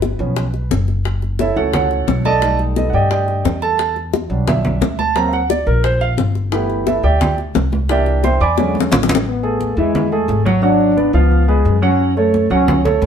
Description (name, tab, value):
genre	Afro-Cuban jazz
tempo	176 BPM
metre	4/4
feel	straight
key	A major from 9.3 s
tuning	A4 = 440 Hz
part	warm concert grand piano	accompaniment	0.0-13.1 s	D3 to D6	-17 LUFS	right 3 dB	none
part	upright bass	bass	0.0-13.1 s	F#1 to G2	-18 LUFS	equal	none
part	bongos	percussion	0.0-9.2 s	none	-21 LUFS	left 6 dB	none
part	congas	percussion	0.0-13.1 s	none	-22 LUFS	equal	none
part	breathy trombone	second line	9.3-12.8 s	G#3 to D4	-18 LUFS	left 3 dB	none
room	moderate studio reverb, RT60 0.8 s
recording	band playing live in one room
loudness	-14 LUFS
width	side -8 dB against mid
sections	0.0-9.3 A section; 9.3-13.1 A section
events	grand piano solo 0.0-9.3; drum fill 8.6-9.3; trombone solo 9.3-13.1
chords	0.0 G7#11; 1.1 F#m7; 2.4 B7alt; 3.8 Em7; 5.2 Daug7; 6.5 G69; 7.9 C9; 8.6 E13; 9.3 Asus2; 10.6 G#m7b5; 11.3 C#7; 12.0 F#m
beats	0.03 0.37 0.71 | 1.05 1.40 1.74 2.08 | 2.42 2.77 3.11 3.45 | 3.79 4.13 4.47 4.82 | 5.16 5.50 5.84 6.18 | 6.53 6.87 7.21 7.55 | 7.89 8.24 8.58 8.92 | 9.26 9.61 9.95 10.29 | 10.63 10.97 11.31 11.66 | 12.00 12.34 12.68 13.02